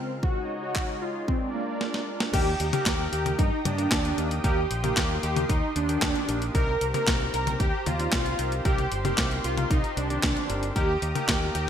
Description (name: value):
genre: italo disco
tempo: 114 BPM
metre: 4/4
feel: straight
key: Eb major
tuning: A4 = 436 Hz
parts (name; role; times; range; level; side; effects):
- wide unison lead; melody; 0.0-11.7 s; Bb3 to Bb4; -29 LUFS; right 1 dB; lush chorus, digital delay
- warm analog pad; sustained chords; 0.0-11.7 s; Db3 to Eb6; -36 LUFS; right 1 dB; chorus
- electronic kick drum; drums; 0.2-11.4 s; none; -27 LUFS; equal; none
- clean 12-bit digital drum machine; drums; 0.8-11.7 s; crash cymbal, handclaps, hi-hat, snare drum, toms; -29 LUFS; left 1 dB; gated reverb
- overdriven tine electric piano; stabs; 2.3-11.6 s; Eb3 to G5; -35 LUFS; left 2 dB; ping-pong delay
- fingered electric bass with an envelope filter; bass; 2.3-11.7 s; G1 to G2; -30 LUFS; equal; none
room: moderate lush hall reverb, RT60 1.9 s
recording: bright 1980s-style digital production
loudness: -24 LUFS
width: side -9 dB against mid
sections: 0.0-2.3 A section; 2.3-11.7 B section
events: drum fill 1.8-2.3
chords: 0.2 Absus4; 1.3 Bb7; 2.3 Eb; 6.5 Cm7; 10.8 Eb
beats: | 0.23 0.76 1.28 1.81 | 2.34 2.86 3.39 3.92 | 4.44 4.97 5.50 6.02 | 6.55 7.07 7.60 8.13 | 8.65 9.18 9.71 10.23 | 10.76 11.28